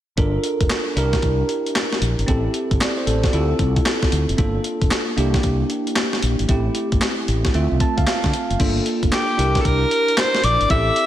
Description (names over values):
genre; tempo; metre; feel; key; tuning
R&B, new jack swing; 114 BPM; 4/4; swing 64% on 16ths; G dorian; A4 = 440 Hz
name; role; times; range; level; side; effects
bell-like tine electric piano; accompaniment; 0.2-11.1 s; A3 to A5; -22 LUFS; right 1 dB; phaser, slapback echo
fretless electric bass; bass; 0.2-10.9 s; F1 to D3; -21 LUFS; equal; none
crisp 8-bit digital drum machine; drums; 0.2-11.1 s; crash cymbal, handclaps, hi-hat, kick drum, snare drum; -21 LUFS; equal; vintage 12-bit sampler grit
bright alto saxophone; melody; 9.1-11.1 s; G4 to E5; -18 LUFS; left 1 dB; slapback echo
room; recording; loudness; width
moderate lush hall reverb, RT60 1.8 s, digital ambience; big arena sound; -17 LUFS; side -12 dB against mid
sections
0.2-8.6 A section; 8.6-11.1 B section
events
tine electric piano fill 7.5-8.6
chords
0.2 Gm7; 1.0 C7; 2.3 Am7; 3.3 Dm7; 4.4 Gm7; 5.2 C7; 6.5 Am7; 7.5 Dm7; 8.6 Gm7; 9.4 C7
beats
| 0.18 0.70 1.23 1.75 | 2.28 2.81 3.33 3.86 | 4.39 4.91 5.44 5.96 | 6.49 7.02 7.54 8.07 | 8.60 9.12 9.65 10.18 | 10.70